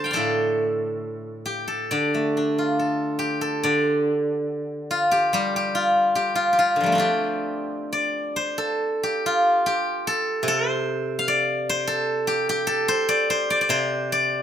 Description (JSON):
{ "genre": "chinese traditional, Chinese solo plucked strings", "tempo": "67-75 BPM", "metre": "2/4", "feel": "rubato", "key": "G shang mode", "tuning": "A4 = 440 Hz", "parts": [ { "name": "steel-string zither", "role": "solo", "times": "0.0-14.4 s", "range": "A2 to A5", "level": "-20 LUFS", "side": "equal", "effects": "none" } ], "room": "studio reverb", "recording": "rough home demo mix", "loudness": "-20 LUFS", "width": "side -9 dB against mid", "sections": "0.0-8.7 A section; 8.7-14.4 B section", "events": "none", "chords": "none", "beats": "| 0.17 1.04 | 1.93 2.80 | 3.67 4.52 | 5.35 6.18 | 7.01 7.87 | 8.74 9.60 | 10.44 11.26 | 12.07 12.87 | 13.70" }